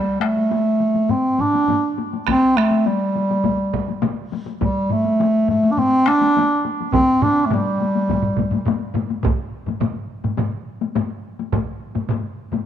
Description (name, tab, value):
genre	japanese traditional, taiko drum ensemble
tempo	104 BPM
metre	4/4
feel	straight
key	unclear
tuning	A4 = 439 Hz
part	mellow bass clarinet	melody	0.0-8.7 s	G3 to D4	-17 LUFS	right 1 dB	none
part	taiko ensemble	percussion	0.2-12.7 s	none	-25 LUFS	left 8 dB	none
part	taiko ensemble	percussion	0.2-12.7 s	none	-28 LUFS	left 3 dB	none
part	taiko ensemble	percussion	2.3-12.7 s	none	-28 LUFS	right 7 dB	none
part	taiko ensemble	percussion	2.3-11.7 s	none	-26 LUFS	right 4 dB	none
room	wet echo chamber reverb, RT60 2.3 s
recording	1960s-style stereo with parts hard left and right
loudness	-17 LUFS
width	side -10 dB against mid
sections	0.0-9.2 A section; 9.2-12.7 B section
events	speeding up 0.0-12.7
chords	none